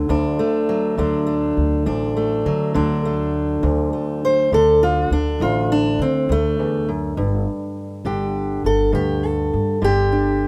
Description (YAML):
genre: acoustic country blues, solo or duo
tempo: 68 BPM (dotted quarters)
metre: 12/8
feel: straight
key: D major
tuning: A4 = 444 Hz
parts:
  - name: fingerpicked steel-string acoustic guitar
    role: melody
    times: 0.0-10.5 s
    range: D2 to C5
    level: -21 LUFS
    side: equal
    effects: none
  - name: upright bass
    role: bass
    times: 0.0-10.5 s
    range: G1 to D3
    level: -25 LUFS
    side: equal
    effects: none
room: studio reverb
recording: rough home demo mix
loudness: -20 LUFS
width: mono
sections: 0.0-10.5 A section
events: steel-string acoustic guitar solo 0.0-10.5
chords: 0.0 D; 7.2 G5